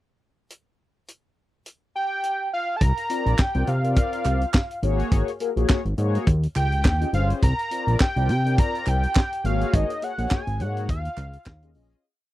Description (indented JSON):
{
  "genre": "early-eighties boogie funk",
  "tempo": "104 BPM",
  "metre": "4/4",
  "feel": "swing 56% on 16ths",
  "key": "C phrygian",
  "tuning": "A4 = 439 Hz",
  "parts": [
    { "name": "tight funk drum kit", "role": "drums", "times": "0.5-12.0 s", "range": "handclaps, hi-hat, kick drum, snare drum", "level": "-20 LUFS", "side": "equal", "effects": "none" },
    { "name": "fat analog lead", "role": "melody", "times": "2.0-11.7 s", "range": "Eb5 to Bb5", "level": "-27 LUFS", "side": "right 1 dB", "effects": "none" },
    { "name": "fat analog bass", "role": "bass", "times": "2.8-12.0 s", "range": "G1 to C3", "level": "-22 LUFS", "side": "equal", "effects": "none" },
    { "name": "mellow synth brass", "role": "accompaniment", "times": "3.1-12.0 s", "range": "Bb3 to Eb5", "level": "-29 LUFS", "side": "left 4 dB", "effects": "chorus" },
    { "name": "group handclap", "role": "percussion", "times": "3.4-11.6 s", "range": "none", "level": "-35 LUFS", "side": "right 7 dB", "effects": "none" }
  ],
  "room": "little or no reverb",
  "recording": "dry, close 1970s-style studio recording",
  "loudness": "-20 LUFS",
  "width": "side -16 dB against mid",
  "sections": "0.5-2.8 pickup bar; 2.8-12.0 verse",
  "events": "fade-out 9.7-12.0",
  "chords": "0.5 N.C.; 2.8 C9sus4; 4.8 Ab9sus4; 6.3 Eb9sus4; 7.4 C9sus4; 9.4 Ab9sus4; 10.9 Eb9sus4",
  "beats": "| 0.50 1.08 1.66 2.23 | 2.81 3.39 3.96 4.54 | 5.12 5.70 6.27 6.85 | 7.43 8.00 8.58 9.16 | 9.73 10.31 10.89 11.46"
}